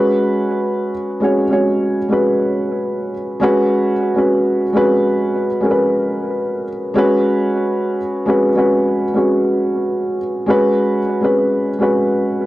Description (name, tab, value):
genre	hip hop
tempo	68 BPM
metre	4/4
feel	swing 66% on 16ths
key	unclear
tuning	A4 = 439 Hz
part	felt-muted upright piano	solo	0.0-12.5 s	G#3 to C#5	-14 LUFS	equal	cassette tape, tape echo
room	little or no reverb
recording	dry, gritty hardware recording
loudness	-14 LUFS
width	side -16 dB against mid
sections	0.0-12.5 A section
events	none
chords	0.0 C#5; 3.4 G#m7